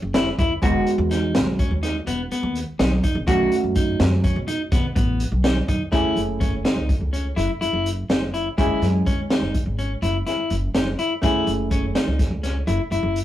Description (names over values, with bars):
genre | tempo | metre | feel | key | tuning
progressive instrumental, band music in an uneven meter | 249 BPM (eighths) | 11/8 | straight | F# dorian | A4 = 440 Hz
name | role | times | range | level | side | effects
vintage hollow-body jazz guitar | accompaniment | 0.0-13.2 s | G#3 to G#4 | -26 LUFS | right 2 dB | none
upright bass | bass | 0.0-13.2 s | E1 to B2 | -24 LUFS | equal | none
clean electric guitar | arpeggios | 0.1-13.2 s | B3 to F#4 | -25 LUFS | left 2 dB | none
crunchy breakbeat drum kit | drums | 0.1-13.2 s | hi-hat, kick drum, snare drum | -23 LUFS | equal | none
room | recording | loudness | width
moderate small room reverb, RT60 0.6 s | rough rehearsal-room recording, warm saturation | -19 LUFS | side -13 dB against mid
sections
0.0-5.9 A section; 5.9-13.2 B section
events
none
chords
0.0 F#m9; 0.6 Emaj9; 3.3 B7; 5.9 F#m7; 8.6 C#m/F#; 11.2 F#m7